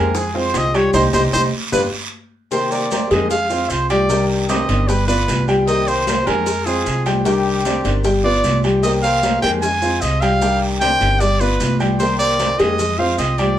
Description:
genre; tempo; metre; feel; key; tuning
latin, Cuban son and guajira; 152 BPM; 4/4; straight; C minor; A4 = 440 Hz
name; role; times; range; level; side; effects
clear trumpet; melody; 0.0-13.6 s; G4 to Ab5; -20 LUFS; right 1 dB; none
nylon-string guitar; accompaniment; 0.0-13.6 s; C3 to G4; -24 LUFS; left 3 dB; none
warm baby grand piano; arpeggios; 0.0-13.6 s; G3 to D6; -20 LUFS; equal; none
upright bass; bass; 0.0-13.6 s; G1 to F2; -22 LUFS; equal; none
bongos and cowbell; percussion; 0.1-13.6 s; none; -28 LUFS; left 3 dB; none
congas; percussion; 0.2-13.6 s; none; -28 LUFS; left 1 dB; none
guiro; percussion; 0.2-13.6 s; none; -29 LUFS; right 4 dB; none
maracas; percussion; 0.2-13.6 s; none; -32 LUFS; right 2 dB; none
room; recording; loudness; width
wet studio ambience, RT60 0.5 s; band playing live in one room; -15 LUFS; side -11 dB against mid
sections
0.0-2.5 A section; 2.5-13.6 B section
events
trumpet solo 0.0-2.5; band accent 0.9-2.5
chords
0.1 Fm; 0.9 Cmadd9; 1.7 G7; 2.5 Cm7; 3.3 Fm; 4.1 Cmadd9; 4.9 G7; 5.7 Cm7; 6.5 Fm; 7.3 Cmadd9; 8.0 G7; 8.8 Cm7; 9.6 Fm; 10.4 Cmadd9; 11.2 G7; 12.0 Cm7; 12.8 Fm

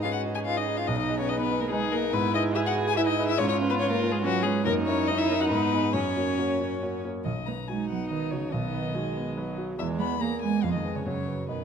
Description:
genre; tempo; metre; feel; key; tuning
quick classical-period movement for piano quartet; 142 BPM; 3/4; straight; B major; A4 = 441 Hz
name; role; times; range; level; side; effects
warm violin; melody; 0.0-11.6 s; F#4 to B5; -30 LUFS; left 8 dB; none
dark cello; second line; 0.0-11.6 s; B2 to G#4; -30 LUFS; right 6 dB; none
warm grand piano; accompaniment; 0.0-11.6 s; B1 to D#5; -30 LUFS; left 1 dB; none
warm viola; accompaniment; 0.0-11.6 s; D#3 to G#4; -32 LUFS; right 2 dB; none
room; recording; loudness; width
moderate concert hall reverb, RT60 2.0 s; none; -24 LUFS; side -7 dB against mid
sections
0.0-7.3 A section; 7.3-11.6 B section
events
none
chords
0.0 G#m; 0.9 G#m/B; 2.1 E/G#; 3.4 C#7/G#; 4.7 F#7; 5.5 G#m; 5.9 F#; 7.3 B; 9.8 E; 10.6 Fm7b5; 11.1 B/F#

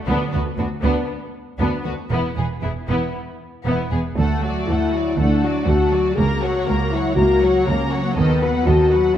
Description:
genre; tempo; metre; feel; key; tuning
cinematic, heroic adventure film score; 119 BPM; 4/4; straight; unclear; A4 = 439 Hz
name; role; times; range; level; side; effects
warm symphonic violin section; melody; 0.1-9.2 s; D4 to A#5; -30 LUFS; left 3 dB; none
warm symphonic violin section; second line; 0.1-9.2 s; B3 to C#5; -28 LUFS; left 3 dB; none
warm symphonic viola section; accompaniment; 0.1-9.2 s; D#3 to B3; -27 LUFS; right 1 dB; none
dark symphonic cello section; bass; 0.1-9.1 s; C#2 to E2; -24 LUFS; right 2 dB; none
dark symphonic double bass section; bass; 0.1-9.1 s; E1 to D#2; -24 LUFS; right 2 dB; none
timpani; percussion; 0.1-0.8 s; D3; -29 LUFS; right 1 dB; none
mellow French horn section; sustained chords; 4.2-9.2 s; A3 to G#4; -19 LUFS; left 3 dB; none
room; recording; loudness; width
moderate scoring stage reverb, RT60 1.6 s; none; -17 LUFS; side -10 dB against mid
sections
0.0-4.2 A section; 4.2-9.2 B section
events
build-up 0.0-4.2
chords
0.1 Bm/D; 2.1 E5; 4.2 D; 6.2 F#/C#; 8.2 B7/D#

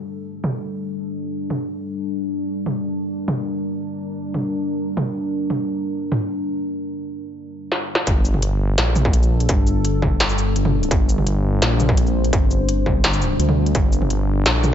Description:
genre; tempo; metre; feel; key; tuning
half-time drum and bass; 169 BPM; 4/4; half-time; G minor; A4 = 440 Hz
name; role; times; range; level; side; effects
deep dark ambient pad; sustained chords; 0.0-14.7 s; G3 to C5; -24 LUFS; left 1 dB; chorus, built-in reverb, sidechain pumping
industrial drum kit; drums; 0.4-14.7 s; hi-hat, shaker, snare drum, toms; -22 LUFS; equal; low-pass filter on snare, low-pass filter on hats, low-pass filter on perc, low-pass filter on toms, low-pass filter on cymbals, low-pass filter on room
dark detuned saw bass; bass; 8.1-14.7 s; G1 to D2; -19 LUFS; equal; none
electronic kick drum; drums; 8.1-13.8 s; none; -19 LUFS; equal; distortion
room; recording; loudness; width
digital ambience; nothing above 7.8 kHz; -18 LUFS; side -9 dB against mid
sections
0.0-8.1 A section; 8.1-14.7 B section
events
break 6.7-8.1; drum fill 7.7-8.1; drop 8.1-14.7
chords
0.0 Gm

